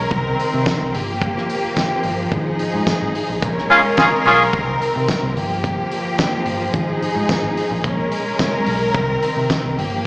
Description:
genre	disco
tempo	109 BPM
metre	4/4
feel	straight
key	F minor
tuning	A4 = 440 Hz
part	bright studio string section	sustained chords	0.0-10.1 s	Eb3 to Bb4	-20 LUFS	equal	none
part	vintage muted fingered electric bass	bass	0.0-10.1 s	G1 to C3	-24 LUFS	equal	none
part	damped 70s drum kit	drums	0.1-9.9 s	hi-hat, kick drum, snare drum	-23 LUFS	equal	slapback echo
part	tambourine	percussion	0.7-9.6 s	none	-34 LUFS	equal	none
part	clear horn section	stabs	3.7-4.4 s	Db4 to Ab4	-12 LUFS	equal	slapback echo
room	light reverb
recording	live gig heard through the venue's PA, recital hall reverb, small speaker sound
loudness	-16 LUFS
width	side -26 dB against mid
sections	0.0-10.1 A section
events	band accent 2.3-4.5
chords	0.1 Cm7; 0.9 Gm7; 2.3 Fm7/Ab; 3.4 Bbm7; 4.5 Cm7; 5.4 Gm7; 6.7 Fm7/Ab; 7.8 Bbm7; 8.9 Cm7

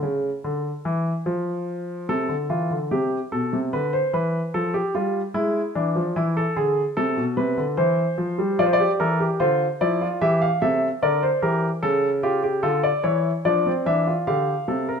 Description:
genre	classical, baroque-style 3-part fugue for grand piano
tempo	74 BPM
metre	4/4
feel	straight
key	D minor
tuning	A4 = 440 Hz
part	warm grand piano	solo	0.0-15.0 s	B2 to F5	-20 LUFS	equal	none
room	wet stone room reverb, RT60 1.3 s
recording	dark, warm production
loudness	-20 LUFS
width	side -6 dB against mid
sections	0.0-15.0 A section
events	none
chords	0.0 N.C.; 2.1 Am/C; 3.7 Bdim/D; 5.3 E; 7.0 Am; 8.6 Dm; 10.2 Edim; 11.8 A/C#; 13.5 Dm

